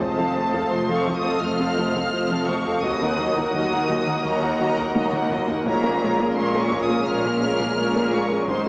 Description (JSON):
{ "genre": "cinematic, hybrid orchestral and electronic film score", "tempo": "85 BPM", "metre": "4/4", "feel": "straight", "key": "Bb minor", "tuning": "A4 = 444 Hz", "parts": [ { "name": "clear studio violin section", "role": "melody", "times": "0.0-8.7 s", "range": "A5 to F6", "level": "-31 LUFS", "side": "equal", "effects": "none" }, { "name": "rich symphonic violin section", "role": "second line", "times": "0.0-8.7 s", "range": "Gb4 to Gb5", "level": "-30 LUFS", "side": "equal", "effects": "none" }, { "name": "warm symphonic viola section", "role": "accompaniment", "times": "0.0-8.7 s", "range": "Gb3 to A4", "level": "-29 LUFS", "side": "equal", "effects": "none" }, { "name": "lush unison pad", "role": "sustained chords", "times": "0.0-8.7 s", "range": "Ab3 to Eb5", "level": "-29 LUFS", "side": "equal", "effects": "chorus" }, { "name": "plucky analog bass", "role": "riff", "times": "0.0-8.7 s", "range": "Eb2 to Bb3", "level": "-34 LUFS", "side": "equal", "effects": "none" }, { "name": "rich studio double bass section", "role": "bass", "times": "0.0-8.7 s", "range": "F1 to Eb2", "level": "-36 LUFS", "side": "equal", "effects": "none" }, { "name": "rich symphonic cello section", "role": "bass", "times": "0.0-8.7 s", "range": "Eb2 to Bb2", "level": "-32 LUFS", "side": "equal", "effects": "none" }, { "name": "sub bass with octave", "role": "bass", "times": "0.0-8.7 s", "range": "Eb1 to Bb1", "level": "-46 LUFS", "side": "equal", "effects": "none" }, { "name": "taiko ensemble", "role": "drums", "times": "0.0-8.7 s", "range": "none", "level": "-35 LUFS", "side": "equal", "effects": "none" } ], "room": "wet scoring stage reverb, RT60 1.9 s", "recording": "heard from further back in the room, small speaker sound", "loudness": "-22 LUFS", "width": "mono", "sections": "0.0-8.7 A section", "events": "drum fill 5.0-5.7", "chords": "0.0 F; 2.8 Ebm; 5.7 Bbm7" }